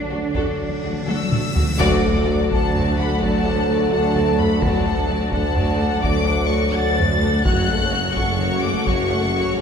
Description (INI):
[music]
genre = cinematic, epic orchestral film score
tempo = 85 BPM (dotted quarters)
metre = 12/8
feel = straight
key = D major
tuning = A4 = 440 Hz
[part]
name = rich studio violin section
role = melody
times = 0.0-9.6 s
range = D5 to A6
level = -26 LUFS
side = left 4 dB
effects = none
[part]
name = mellow French horn section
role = sustained chords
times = 0.0-9.6 s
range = A3 to D5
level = -26 LUFS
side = left 1 dB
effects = none
[part]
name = mellow trombone section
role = sustained chords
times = 0.0-9.6 s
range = C#3 to F#3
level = -27 LUFS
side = right 2 dB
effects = none
[part]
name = rich symphonic cello section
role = bass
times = 0.0-9.6 s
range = D2 to D4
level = -29 LUFS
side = right 2 dB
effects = none
[part]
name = timpani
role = percussion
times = 0.0-1.7 s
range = D3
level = -30 LUFS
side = left 2 dB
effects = none
[part]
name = cymbal swell and impact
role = sound effects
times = 0.6-4.6 s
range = none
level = -34 LUFS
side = equal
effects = none
[part]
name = rich symphonic violin section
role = second line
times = 0.1-9.6 s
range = D4 to F#5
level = -27 LUFS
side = left 3 dB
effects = none
[part]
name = warm symphonic viola section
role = accompaniment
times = 0.1-9.6 s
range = F#3 to F#4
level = -29 LUFS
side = left 1 dB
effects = none
[part]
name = rich studio double bass section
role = bass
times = 0.1-9.6 s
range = F#1 to D2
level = -27 LUFS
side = right 1 dB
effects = none
[part]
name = warm tuba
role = bass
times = 0.1-9.6 s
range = F#1 to D2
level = -26 LUFS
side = right 1 dB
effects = none
[part]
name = taiko ensemble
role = drums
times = 0.3-9.3 s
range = none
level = -24 LUFS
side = equal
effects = none
[sound]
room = wet church reverb, RT60 3.4 s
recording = recorded in a church or concert hall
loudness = -17 LUFS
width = side -7 dB against mid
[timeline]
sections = 0.0-1.8 A section; 1.8-9.6 A section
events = timpani fill 0.0-1.8; cymbal swell 0.6-1.8; drum fill 1.1-1.8; band accent 1.8-2.3; impact 1.8-4.6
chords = 0.0 D; 7.5 F#m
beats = 0.35 1.08 | 1.80 2.51 3.22 3.92 | 4.63 5.33 6.03 6.75 | 7.46 8.16 8.87 9.57